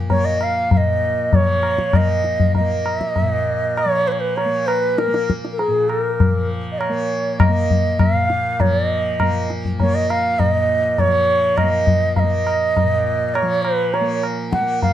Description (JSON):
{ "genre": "indian classical, Hindustani", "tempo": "100 BPM", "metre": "4/4", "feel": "straight", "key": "Bb raga bhairavi", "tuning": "A4 = 440 Hz", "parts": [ { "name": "tanpura", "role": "drone", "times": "0.0-14.9 s", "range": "Bb2 to Bb3", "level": "-26 LUFS", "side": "right 3 dB", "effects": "none" }, { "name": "breathy bright bansuri", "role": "melody", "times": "0.1-14.9 s", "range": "Ab4 to Gb5", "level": "-19 LUFS", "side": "right 1 dB", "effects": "slapback echo" }, { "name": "tabla", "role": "percussion", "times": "0.1-14.9 s", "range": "none", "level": "-19 LUFS", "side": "left 2 dB", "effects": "none" } ], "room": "light reverb", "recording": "dark, warm production", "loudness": "-16 LUFS", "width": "side -11 dB against mid", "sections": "0.0-8.6 A section; 8.6-14.9 B section", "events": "speeding up 0.0-14.9", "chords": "none" }